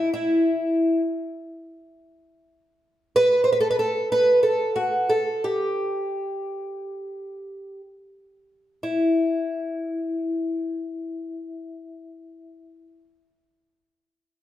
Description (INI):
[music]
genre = fado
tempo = 61-100 BPM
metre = 4/4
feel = rubato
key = E minor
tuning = A4 = 440 Hz
[part]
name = fingerpicked twelve-string acoustic guitar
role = solo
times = 0.0-12.9 s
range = E4 to C5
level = -22 LUFS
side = equal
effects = none
[sound]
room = wet recital hall reverb, RT60 1.3 s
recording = none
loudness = -21 LUFS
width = side -12 dB against mid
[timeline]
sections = 0.0-8.8 A section; 8.8-12.6 B section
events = slowing down 2.9-8.8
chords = none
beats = | 0.41 1.03 1.65 2.26 | 2.86 3.47 4.09 4.75 | 5.44 6.17 6.96 7.84 | 8.80 9.78 10.74 11.68